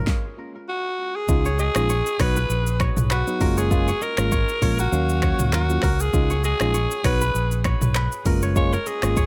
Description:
afrobeats; 99 BPM; 4/4; swing 55% on 16ths; A4 = 440 Hz
kora; riff; 0.0-9.3 s; Ab4 to Eb5; -34 LUFS; equal; tape echo
fingered electric bass; bass; 0.0-9.3 s; Gb1 to Eb2; -25 LUFS; equal
deep house drum kit; drums; 0.1-9.3 s; finger snaps, handclaps, hi-hat, kick drum, rim click, shaker, snare drum, toms; -26 LUFS; equal
raspy alto saxophone; melody; 0.7-9.3 s; Gb4 to Db5; -28 LUFS; equal; tape echo
tine electric piano; accompaniment; 1.3-9.2 s; F#3 to F5; -31 LUFS; equal; tape echo
little or no reverb; echo-heavy mix; -22 LUFS; mono
0.0-1.3 A section; 1.3-9.3 B section
stop 0.1-1.3
0.1 N.C.; 1.3 Dbadd9; 2.2 B; 3.4 Gbmaj7; 4.9 Ebm7; 6.1 Dbadd9; 7.0 B; 8.3 Gbmaj7

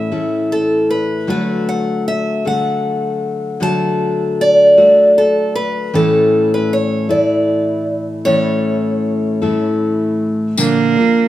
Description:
acoustic folk duo or small band; 52 BPM (dotted quarters); 6/8; straight; D major; A4 = 435 Hz
picked old ladder-braced acoustic guitar; melody; 0.0-9.8 s; A4 to A5; -14 LUFS; equal
picked steel-string acoustic guitar; accompaniment; 0.0-11.3 s; A2 to Bb4; -17 LUFS; left 2 dB
clear cello; second line; 10.6-11.3 s; Bb3; -13 LUFS; right 6 dB
tambourine; percussion; 10.6-10.8 s; -20 LUFS; left 5 dB
moderate large studio reverb, RT60 1.3 s; minimal, uncompressed stereo recording; -13 LUFS; side -13 dB against mid
0.0-10.6 A section
0.0 A; 1.3 D; 5.9 A; 10.6 Bb

